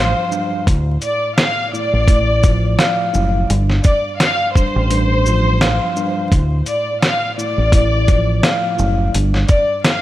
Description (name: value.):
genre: hip hop, boom-bap hip-hop.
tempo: 85 BPM.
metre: 4/4.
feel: swing 57% on 16ths.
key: D minor.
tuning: A4 = 439 Hz.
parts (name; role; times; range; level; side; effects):
rich studio violin section; melody; 0.0-10.0 s; C5 to F5; -20 LUFS; equal; high-pass filter, low-pass filter.
mellow tine electric piano; accompaniment; 0.0-10.0 s; G2 to F5; -21 LUFS; equal; medium stereo tremolo, high-pass filter, low-pass filter.
deep dub fingered electric bass; bass; 0.0-9.4 s; F#1 to D2; -16 LUFS; equal; none.
dusty soul sampler-style drum kit; drums; 0.3-10.0 s; hi-hat, kick drum, shaker, snare drum; -16 LUFS; equal; none.
room: light reverb, digital ambience.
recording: vinyl crackle.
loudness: -13 LUFS.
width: side -14 dB against mid.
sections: 0.0-10.0 A section.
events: none.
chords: 0.0 G7sus4; 0.7 Dm; 3.5 G7sus4; 6.3 Dm; 9.1 G5.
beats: | 0.67 1.38 2.08 2.79 | 3.49 4.20 4.91 5.61 | 6.32 7.02 7.73 8.44 | 9.14 9.85.